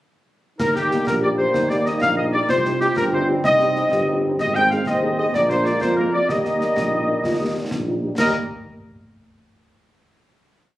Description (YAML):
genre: military-style march for wind band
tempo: 126 BPM (dotted quarters)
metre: 6/8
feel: straight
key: Eb major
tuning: A4 = 440 Hz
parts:
  - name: warm cornet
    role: melody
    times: 0.6-8.3 s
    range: G4 to G5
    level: -25 LUFS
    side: equal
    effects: none
  - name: clear woodwind section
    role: second line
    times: 0.6-8.3 s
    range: G4 to G5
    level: -21 LUFS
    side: left 1 dB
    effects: none
  - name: warm euphonium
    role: second line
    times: 0.6-8.1 s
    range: C4 to Ab4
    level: -26 LUFS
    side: right 1 dB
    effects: none
  - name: clear trombone section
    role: sustained chords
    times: 0.6-8.3 s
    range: G3 to C4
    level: -27 LUFS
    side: right 1 dB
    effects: none
  - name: mellow tuba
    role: bass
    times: 0.6-8.3 s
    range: G1 to F2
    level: -25 LUFS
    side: right 1 dB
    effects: none
  - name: concert snare drum, clash cymbals and concert bass drum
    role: drums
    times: 0.6-8.4 s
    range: none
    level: -31 LUFS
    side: left 1 dB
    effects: none
  - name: mellow French horn section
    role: accompaniment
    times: 0.8-8.3 s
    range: G3 to Ab4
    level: -29 LUFS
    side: left 3 dB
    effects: none
room: moderate large studio reverb, RT60 1.1 s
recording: recorded on a phone in the room, club reverb, compression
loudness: -17 LUFS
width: side -15 dB against mid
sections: 0.6-8.2 A section; 8.2-9.1 final chord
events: none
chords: 0.6 Eb; 2.5 Cm; 4.4 Ab; 5.3 Bb7; 6.3 Eb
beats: | 0.59 1.07 | 1.54 2.02 | 2.49 2.97 | 3.44 3.92 | 4.39 4.87 | 5.34 5.82 | 6.29 6.76 | 7.24 7.71 | 8.19